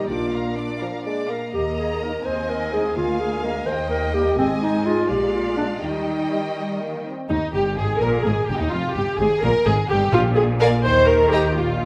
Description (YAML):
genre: quick classical-period movement for symphony orchestra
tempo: 84 BPM (dotted quarters)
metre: 6/8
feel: straight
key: Eb major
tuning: A4 = 443 Hz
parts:
  - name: rich studio violin section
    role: melody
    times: 0.0-11.4 s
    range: Eb4 to D6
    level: -33 LUFS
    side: equal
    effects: none
  - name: rich studio violin section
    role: second line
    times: 0.0-11.4 s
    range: Eb4 to G5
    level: -32 LUFS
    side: equal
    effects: none
  - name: warm clarinet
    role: second line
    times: 0.0-6.5 s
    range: C4 to C5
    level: -26 LUFS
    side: equal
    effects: none
  - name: warm studio viola section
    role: accompaniment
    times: 0.0-11.8 s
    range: G3 to C5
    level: -26 LUFS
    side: equal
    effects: none
  - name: mellow French horn section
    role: sustained chords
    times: 0.0-7.3 s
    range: G3 to Eb4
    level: -34 LUFS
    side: equal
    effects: none
  - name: rich studio cello section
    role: bass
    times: 0.0-11.8 s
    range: D2 to Eb3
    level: -30 LUFS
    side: equal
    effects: none
  - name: warm studio double bass section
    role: bass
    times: 0.1-11.8 s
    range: F1 to Eb2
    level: -30 LUFS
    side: equal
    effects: none
  - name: dark bassoon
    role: accompaniment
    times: 0.8-1.5 s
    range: F3 to Bb3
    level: -32 LUFS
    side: equal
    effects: none
  - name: timpani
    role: percussion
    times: 10.1-10.8 s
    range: Bb2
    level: -27 LUFS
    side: equal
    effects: none
room: wet scoring stage reverb, RT60 1.8 s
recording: none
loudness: -21 LUFS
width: mono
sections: 0.0-7.3 A section; 7.3-11.8 B section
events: none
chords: 0.1 Bb; 1.5 Eb5; 2.3 Ab/Eb; 3.0 Bb7/D; 3.7 Eb; 4.4 Ab5; 5.1 Bb7; 5.8 Eb; 8.7 Fm; 10.1 N.C.; 10.8 Eb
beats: | 0.10 0.81 | 1.54 2.26 | 2.96 3.67 | 4.38 5.09 | 5.82 6.56 | 7.30 8.01 | 8.72 9.43 | 10.13 10.84 | 11.56